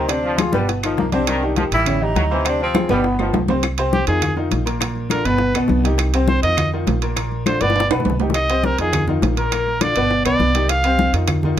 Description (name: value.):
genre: latin, salsa.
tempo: 204 BPM.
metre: 4/4.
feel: straight.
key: C minor.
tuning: A4 = 442 Hz.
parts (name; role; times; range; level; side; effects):
mellow tenor saxophone; melody; 0.0-3.5 s; Bb3 to F4; -22 LUFS; right 1 dB; none.
brilliant trombone section; second line; 0.0-3.4 s; Eb3 to G3; -26 LUFS; equal; none.
bright upright piano; accompaniment; 0.0-11.6 s; Bb2 to C#5; -22 LUFS; left 1 dB; none.
upright bass; bass; 0.0-11.6 s; G1 to F2; -22 LUFS; right 1 dB; none.
bongos; percussion; 0.1-11.6 s; none; -27 LUFS; left 8 dB; none.
claves; percussion; 0.1-11.4 s; none; -33 LUFS; left 5 dB; none.
congas; percussion; 0.1-11.6 s; none; -24 LUFS; left 2 dB; none.
timbales; percussion; 0.1-11.4 s; none; -25 LUFS; right 11 dB; none.
clear trumpet; melody; 3.9-11.1 s; G4 to F5; -20 LUFS; right 1 dB; none.
room: light reverb.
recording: close, detailed microphones.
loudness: -16 LUFS.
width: side -10 dB against mid.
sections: 0.0-3.6 A section; 3.6-11.6 B section.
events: drum fill 2.8-3.6, 7.6-8.3; trumpet solo 3.6-11.6.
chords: 0.1 Dm7b5; 0.7 Gaug7; 1.3 Cmadd9; 1.9 A7; 2.5 Dm7b5; 3.0 Gaug7; 3.6 Cm; 4.2 Bb7sus4; 4.8 Bb; 5.4 G; 6.0 Cm; 6.6 Bbsus4; 7.2 Bb; 7.8 G; 8.3 Cm; 8.9 Bb7sus4; 9.5 Bb; 10.1 G; 10.7 Cm.